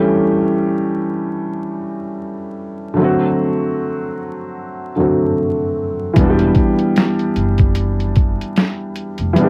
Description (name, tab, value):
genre	lo-fi hip hop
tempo	75 BPM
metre	4/4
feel	swing 57% on 16ths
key	E minor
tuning	A4 = 442 Hz
part	warm upright piano	accompaniment	0.0-9.5 s	D3 to G4	-19 LUFS	equal	cassette tape, low-pass filter
part	upright bass	bass	6.2-9.3 s	E1 to F#1	-21 LUFS	equal	none
part	lo-fi sampler-style drum kit	drums	6.2-9.5 s	hi-hat, kick drum, snare drum	-17 LUFS	equal	overdrive, cassette tape
room	moderate booth ambience, RT60 0.3 s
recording	home recording on cassette, vinyl crackle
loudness	-17 LUFS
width	mono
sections	0.0-6.2 A section; 6.2-9.5 B section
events	filter sweep on upright piano 0.0-6.2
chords	0.0 A7; 3.0 D7; 6.2 Em7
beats	0.57 1.37 2.17 | 2.97 3.77 4.57 5.37 | 6.17 6.97 7.77 8.57 | 9.37